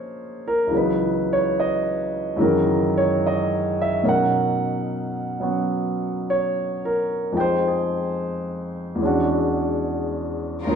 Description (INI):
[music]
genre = jazz ballad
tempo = 72 BPM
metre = 4/4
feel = swing 67% on 8ths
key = unclear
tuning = A4 = 440 Hz
[part]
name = warm concert grand piano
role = accompaniment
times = 0.0-10.8 s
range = Db2 to G5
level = -20 LUFS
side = equal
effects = none
[part]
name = warm symphonic string section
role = sustained chords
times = 10.6-10.8 s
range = Gb3 to Bb4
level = -25 LUFS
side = equal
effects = none
[sound]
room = wet recital hall reverb, RT60 1.5 s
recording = recorded in a church or concert hall, nothing above 10.3 kHz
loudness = -20 LUFS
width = side -7 dB against mid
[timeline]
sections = 0.0-10.8 A section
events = none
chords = 0.0 Bbm7; 0.7 Dbm11; 2.4 Gb13; 4.0 Bmaj9; 7.3 Fm7; 9.0 E13